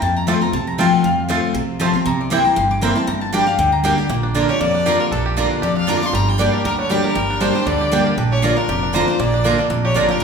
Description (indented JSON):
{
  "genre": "bluegrass",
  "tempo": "235 BPM",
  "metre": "4/4",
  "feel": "swing 55% on 8ths",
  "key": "unclear",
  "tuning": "A4 = 442 Hz",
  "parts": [
    { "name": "mandolin", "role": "melody", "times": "0.0-3.8 s", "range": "D5 to D6", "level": "-20 LUFS", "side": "left 4 dB", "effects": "none" },
    { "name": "picked steel-string acoustic guitar", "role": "accompaniment", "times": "0.0-10.2 s", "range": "F2 to G4", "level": "-19 LUFS", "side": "left 1 dB", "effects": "none" },
    { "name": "upright bass", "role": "bass", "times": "0.0-10.2 s", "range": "F1 to F2", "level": "-24 LUFS", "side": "right 2 dB", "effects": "none" },
    { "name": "bluegrass banjo", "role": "melody", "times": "0.3-10.2 s", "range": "G3 to G4", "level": "-27 LUFS", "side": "right 3 dB", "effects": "none" },
    { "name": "mandolin", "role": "stabs", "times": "0.3-10.1 s", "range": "Bb3 to Bb5", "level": "-23 LUFS", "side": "right 4 dB", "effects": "none" },
    { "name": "clear fiddle", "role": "second line", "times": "4.5-10.2 s", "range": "A4 to D6", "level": "-21 LUFS", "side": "left 1 dB", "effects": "none" }
  ],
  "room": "wet large studio reverb, RT60 1.4 s",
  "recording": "band playing live in one room",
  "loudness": "-15 LUFS",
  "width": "side -6 dB against mid",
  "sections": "0.0-4.1 A section; 4.1-10.2 A section",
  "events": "mandolin solo 0.0-4.1; fiddle solo 4.1-10.2",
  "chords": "0.0 F; 2.1 C7; 3.1 Gm; 4.1 Bb; 6.1 Gm; 8.2 Bb",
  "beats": "| 0.02 0.28 0.53 0.79 | 1.04 1.29 1.55 1.80 | 2.06 2.31 2.57 2.82 | 3.08 3.33 3.59 3.84 | 4.10 4.35 4.61 4.86 | 5.12 5.37 5.63 5.88 | 6.14 6.39 6.65 6.90 | 7.16 7.41 7.67 7.92 | 8.18 8.43 8.69 8.94 | 9.20 9.45 9.71 9.96 | 10.22"
}